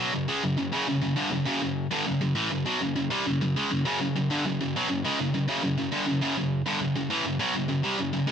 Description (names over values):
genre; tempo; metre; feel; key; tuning
metal; 101 BPM; 4/4; straight; unclear; A4 = 440 Hz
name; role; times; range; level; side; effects
high-gain distorted guitar; solo; 0.0-8.3 s; F#2 to G#3; -24 LUFS; equal; distortion
room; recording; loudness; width
digital ambience; none; -24 LUFS; side -8 dB against mid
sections
0.0-8.3 A section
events
none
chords
0.0 F#5